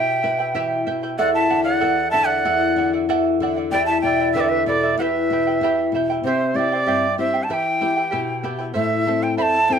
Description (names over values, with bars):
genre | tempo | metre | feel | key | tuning
andean folk, Andean ensemble | 95 BPM | 2/4 | straight | E minor | A4 = 440 Hz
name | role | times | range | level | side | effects
breathy bright quena | melody | 0.0-9.8 s | C5 to B5 | -20 LUFS | right 1 dB | none
breathy mellow large pan pipes | second line | 0.0-5.9 s | A4 to E5 | -25 LUFS | equal | slapback echo
charango | accompaniment | 0.0-9.8 s | E4 to A5 | -24 LUFS | right 6 dB | none
flamenco guitar | accompaniment | 0.0-9.8 s | E2 to B4 | -23 LUFS | left 6 dB | none
room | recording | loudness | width
wet studio ambience, RT60 0.5 s | none | -17 LUFS | side -7 dB against mid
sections
0.0-6.2 A section; 6.2-9.8 B section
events
none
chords
0.0 Em; 1.2 D/E; 3.7 G/E; 5.0 Em; 6.2 C; 7.5 Em; 8.8 Am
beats
0.55 | 1.18 1.81 | 2.45 3.08 | 3.71 4.35 | 4.98 5.61 | 6.24 6.87 | 7.50 8.12 | 8.75 9.38